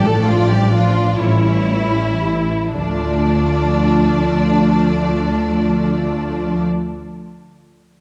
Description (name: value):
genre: classical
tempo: 37-46 BPM (dotted quarters)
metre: 6/8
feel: rubato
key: D minor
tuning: A4 = 440 Hz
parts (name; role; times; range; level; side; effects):
- rich symphonic violin section; melody; 0.0-6.6 s; C#5 to D5; -32 LUFS; equal; none
- warm symphonic violin section; second line; 0.0-6.6 s; D4 to A4; -23 LUFS; equal; none
- rich symphonic viola section; accompaniment; 0.0-6.6 s; F3 to F4; -22 LUFS; equal; none
- concert harp; arpeggios; 0.0-7.4 s; A2 to D5; -26 LUFS; equal; none
- warm studio double bass section; bass; 0.0-6.6 s; A1 to D2; -24 LUFS; equal; none
- warm symphonic cello section; bass; 0.0-6.6 s; E3 to A3; -24 LUFS; equal; none
- timpani; percussion; 0.0-7.2 s; A2 to D3; -28 LUFS; equal; none
room: wet scoring stage reverb, RT60 2.1 s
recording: none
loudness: -16 LUFS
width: mono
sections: 0.0-2.7 A section; 2.7-5.9 B section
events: slowing down 0.0-2.7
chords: 0.0 Dm/A; 1.2 A7; 2.7 Dm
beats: 1.20 | 2.74 4.31